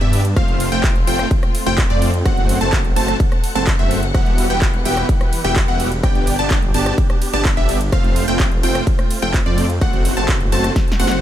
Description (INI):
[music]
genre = EDM, festival progressive house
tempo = 127 BPM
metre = 4/4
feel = straight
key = unclear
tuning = A4 = 440 Hz
[part]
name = muted studio string section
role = sustained chords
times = 0.0-11.2 s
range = E3 to F#5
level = -28 LUFS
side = equal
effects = sidechain pumping
[part]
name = plucky unison lead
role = arpeggios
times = 0.0-11.2 s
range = D5 to A5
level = -24 LUFS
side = equal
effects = phaser, sidechain pumping, tape echo
[part]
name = dense compressed supersaw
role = riff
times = 0.0-11.2 s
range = A3 to A5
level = -22 LUFS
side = equal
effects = cassette tape, sidechain pumping, tape echo
[part]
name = detuned saw bass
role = bass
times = 0.0-11.2 s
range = E1 to G2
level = -21 LUFS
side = equal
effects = sidechain pumping
[part]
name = big-room dance drum kit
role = drums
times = 0.0-11.2 s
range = handclaps, hi-hat, ride cymbal, rim click, snare drum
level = -25 LUFS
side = right 1 dB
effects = none
[part]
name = electronic kick drum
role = drums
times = 0.4-10.9 s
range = none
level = -17 LUFS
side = equal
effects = none
[sound]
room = digital ambience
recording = none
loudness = -14 LUFS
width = side -12 dB against mid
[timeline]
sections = 0.0-11.2 A section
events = drum fill 10.8-11.2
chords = 0.4 F; 2.3 F#dim; 4.1 Emadd9; 6.0 G; 7.9 F; 9.8 F#dim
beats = | 0.37 0.84 1.31 1.78 | 2.25 2.73 3.20 3.67 | 4.14 4.62 5.09 5.56 | 6.04 6.51 6.98 7.45 | 7.92 8.40 8.87 9.34 | 9.81 10.29 10.76